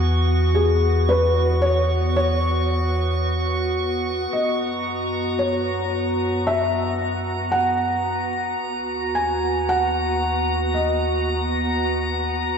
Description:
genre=ambient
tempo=56 BPM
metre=4/4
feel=straight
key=unclear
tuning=A4 = 440 Hz
part: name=warm sub bass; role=bass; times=0.0-12.6 s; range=D#2 to F#2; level=-24 LUFS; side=equal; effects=none
part: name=organ-like drone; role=drone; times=0.0-12.6 s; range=B3 to F#4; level=-25 LUFS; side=right 2 dB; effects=ensemble chorus, built-in reverb
part: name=drifting glass-harmonics texture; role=texture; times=0.0-12.6 s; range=A#5 to C#6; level=-28 LUFS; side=left 1 dB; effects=chorus, built-in reverb
part: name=felt-muted upright piano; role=melody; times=0.5-12.3 s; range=G#4 to G#5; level=-24 LUFS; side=left 1 dB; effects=ping-pong delay
room=wet lush hall reverb, RT60 2.9 s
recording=none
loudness=-19 LUFS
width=side -6 dB against mid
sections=0.0-4.3 A section; 4.3-12.6 B section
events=fade-in on sub bass 4.3-12.6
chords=0.0 E5; 4.3 F#7; 8.6 D#m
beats=| 0.04 1.11 2.18 3.26 | 4.33 5.40 6.47 7.54 | 8.61 9.68 10.76 11.83

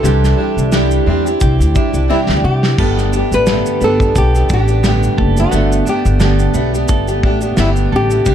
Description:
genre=acoustic pop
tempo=88 BPM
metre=4/4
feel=swing 55% on 16ths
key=G major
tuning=A4 = 439 Hz
part: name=nylon-string guitar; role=melody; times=0.0-8.3 s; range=E4 to B4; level=-19 LUFS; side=left 2 dB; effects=digital delay
part: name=fingerpicked plugged-in steel-string acoustic guitar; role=accompaniment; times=0.0-8.3 s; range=G2 to G4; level=-17 LUFS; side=equal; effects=double-tracked left and right
part: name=direct-recorded clean electric guitar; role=arpeggios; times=0.0-8.3 s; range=E3 to A4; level=-24 LUFS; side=right 7 dB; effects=wide subtle chorus
part: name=upright bass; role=bass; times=0.0-8.3 s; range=F#1 to C3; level=-15 LUFS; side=equal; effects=none
part: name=loose indie drum kit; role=drums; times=0.0-8.3 s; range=kick drum, shaker, snare drum, splash cymbal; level=-18 LUFS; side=equal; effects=none
room=studio ambience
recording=dark, warm production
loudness=-11 LUFS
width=side -9 dB against mid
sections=0.0-8.3 A section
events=drum fill 2.1-2.8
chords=0.0 Cadd9; 2.8 Gadd9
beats=| 0.04 0.73 1.41 2.10 | 2.78 3.47 4.15 4.84 | 5.52 6.21 6.89 7.58 | 8.26

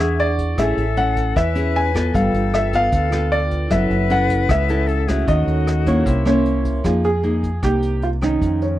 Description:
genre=bossa nova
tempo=153 BPM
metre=4/4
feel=straight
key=unclear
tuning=A4 = 439 Hz
part: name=warm concert grand piano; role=melody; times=0.0-8.8 s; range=Db4 to G#5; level=-22 LUFS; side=right 1 dB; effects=none
part: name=breathy reedy jazz flute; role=second line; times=0.0-6.6 s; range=E4 to B4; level=-25 LUFS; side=left 10 dB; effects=none
part: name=nylon-string guitar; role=accompaniment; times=0.0-8.8 s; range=F2 to A4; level=-22 LUFS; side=left 1 dB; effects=none
part: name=vibraphone with medium mallets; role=accompaniment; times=0.0-6.9 s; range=Db4 to C#6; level=-28 LUFS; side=right 4 dB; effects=none
part: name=deep dub fingered electric bass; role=bass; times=0.0-8.8 s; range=F#1 to F2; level=-21 LUFS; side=equal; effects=none
part: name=vintage brush drum kit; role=drums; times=0.2-8.7 s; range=hi-hat, kick drum, rim click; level=-26 LUFS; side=equal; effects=none
room=little or no reverb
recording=dry, close 1970s-style studio recording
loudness=-16 LUFS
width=side -14 dB against mid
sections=0.0-6.8 A section; 6.8-8.8 B section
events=none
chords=0.0 E13; 0.6 Amaj7; 2.1 G9; 3.7 F#m7; 5.3 D#m7b5; 6.1 C7b9; 6.8 Fm11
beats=0.19 | 0.58 0.97 1.36 1.75 | 2.14 2.53 2.93 3.32 | 3.71 4.10 4.49 4.88 | 5.27 5.67 6.06 6.45 | 6.84 7.23 7.63 8.02 | 8.41

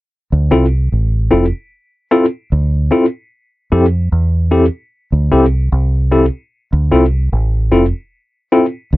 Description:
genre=lovers rock reggae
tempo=75 BPM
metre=4/4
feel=straight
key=D minor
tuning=A4 = 440 Hz
part: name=deep dub fingered electric bass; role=bass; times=0.3-9.0 s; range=F1 to F2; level=-13 LUFS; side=equal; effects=none
part: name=mellow tine electric piano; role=accompaniment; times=0.5-8.7 s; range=C4 to A4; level=-11 LUFS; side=left 1 dB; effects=overdrive, fast tremolo
room=light reverb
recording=dry, close 1970s-style studio recording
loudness=-12 LUFS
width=side -18 dB against mid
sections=0.1-9.0 A section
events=none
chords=0.1 Dm9; 3.3 Fmaj7 (rootless); 6.5 Dm9 (rootless)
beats=| 0.11 0.91 1.71 2.51 | 3.31 4.11 4.91 5.71 | 6.51 7.32 8.12 8.91

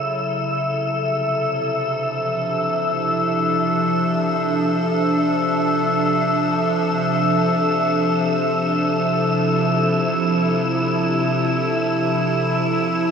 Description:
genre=ambient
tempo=free time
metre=none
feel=none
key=unclear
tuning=A4 = 439 Hz
part: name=evolving wavetable pad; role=sustained chords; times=0.0-13.1 s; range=C3 to A4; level=-20 LUFS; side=equal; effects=chorus, built-in reverb
part: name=wind-like tuned noise texture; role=texture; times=0.0-13.1 s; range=E5 to E6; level=-22 LUFS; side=left 1 dB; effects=built-in reverb
room=wet huge ambient reverb, RT60 8.0 s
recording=none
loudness=-18 LUFS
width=side -6 dB against mid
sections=0.0-13.1 A section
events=fade-in on ambient pad 0.0-13.1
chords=0.3 Dm7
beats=free time

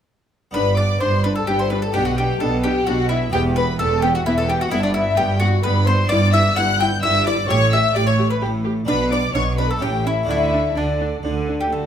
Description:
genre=classical, baroque-style concerto movement with solo episodes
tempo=129 BPM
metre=3/4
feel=straight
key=G major, D major from 6.1 s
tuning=A4 = 441 Hz
part: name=mandolin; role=melody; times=0.5-11.9 s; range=D4 to G5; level=-22 LUFS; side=left 2 dB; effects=none
part: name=rich chamber violin section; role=melody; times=0.5-11.9 s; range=D5 to G6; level=-26 LUFS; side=left 3 dB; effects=none
part: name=warm chamber violin section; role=second line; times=0.5-11.9 s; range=D4 to G5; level=-25 LUFS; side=left 1 dB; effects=none
part: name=harpsichord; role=accompaniment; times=0.5-11.9 s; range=D2 to F#4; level=-30 LUFS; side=right 1 dB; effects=none
part: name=rich studio viola section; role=accompaniment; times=0.5-11.9 s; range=A3 to G4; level=-28 LUFS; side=right 1 dB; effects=none
part: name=rich chamber double bass section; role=bass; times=0.5-11.6 s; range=E1 to D2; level=-23 LUFS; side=right 2 dB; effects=none
part: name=rich symphonic cello section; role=bass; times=0.5-11.9 s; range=D2 to D3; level=-23 LUFS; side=right 1 dB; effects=none
room=light reverb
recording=close, detailed microphones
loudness=-16 LUFS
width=side -9 dB against mid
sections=0.5-11.7 A section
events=none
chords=0.5 G; 1.9 Gmaj13/B; 3.3 E5; 4.7 Em/G; 7.5 A5; 8.9 Bm; 9.8 A7; 10.3 D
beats=| 0.55 1.01 1.48 | 1.94 2.41 2.87 | 3.33 3.80 4.26 | 4.72 5.18 5.64 | 6.10 6.57 7.03 | 7.49 7.95 8.41 | 8.88 9.34 9.81 | 10.28 10.76 11.23 | 11.70

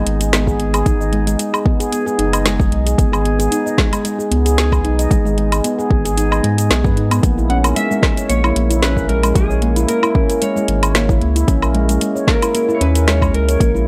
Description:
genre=organic downtempo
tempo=113 BPM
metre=4/4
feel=swing 54% on 16ths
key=G# minor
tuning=A4 = 440 Hz
part: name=handpan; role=arpeggios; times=0.0-13.9 s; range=G#3 to D#5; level=-21 LUFS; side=equal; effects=tape echo
part: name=warm sub bass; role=bass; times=0.0-13.9 s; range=F#1 to G#2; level=-20 LUFS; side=equal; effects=sidechain pumping
part: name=afro-pop drum kit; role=drums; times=0.1-13.9 s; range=hi-hat, shaker, snare drum, woodblock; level=-22 LUFS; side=equal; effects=overdrive
part: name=electronic kick drum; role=drums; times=0.5-13.7 s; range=none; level=-19 LUFS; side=equal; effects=overdrive
part: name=clean lap steel guitar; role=melody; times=7.5-13.9 s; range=G#4 to F#5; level=-23 LUFS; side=equal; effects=tape echo
room=little or no reverb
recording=dry, gritty hardware recording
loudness=-16 LUFS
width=mono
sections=0.0-13.9 A section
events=none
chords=0.0 G#m; 7.2 A#m7b5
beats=0.33 | 0.86 1.39 1.92 2.46 | 2.99 3.52 4.05 4.58 | 5.11 5.64 6.17 6.70 | 7.23 7.76 8.30 8.83 | 9.36 9.89 10.42 10.95 | 11.48 12.01 12.54 13.07 | 13.61

